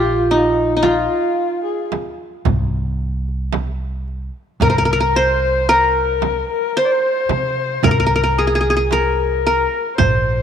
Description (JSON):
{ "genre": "Turkish makam ensemble", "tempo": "112 BPM (eighths)", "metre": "10/8", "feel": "straight", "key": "C makam ussak", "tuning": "A4 = 440 Hz", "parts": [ { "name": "qanun", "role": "melody", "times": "0.0-10.4 s", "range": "Eb4 to C5", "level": "-17 LUFS", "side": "right 1 dB", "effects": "none" }, { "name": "dark kamancheh", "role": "second line", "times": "0.0-10.4 s", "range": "Eb4 to D5-31c", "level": "-22 LUFS", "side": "left 9 dB", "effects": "none" }, { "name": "upright bass", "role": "bass", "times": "0.0-10.4 s", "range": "Bb1 to C3", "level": "-22 LUFS", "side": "right 1 dB", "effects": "none" }, { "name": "darbuka", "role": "percussion", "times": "0.8-10.2 s", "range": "none", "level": "-24 LUFS", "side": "left 4 dB", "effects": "none" }, { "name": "frame drum", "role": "percussion", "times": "0.8-10.2 s", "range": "none", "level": "-22 LUFS", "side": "right 8 dB", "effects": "none" } ], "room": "moderate echo chamber reverb, RT60 2.0 s", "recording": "1960s-style stereo with parts hard left and right", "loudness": "-15 LUFS", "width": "side -8 dB against mid", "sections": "0.0-10.4 A section", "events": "none", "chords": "none" }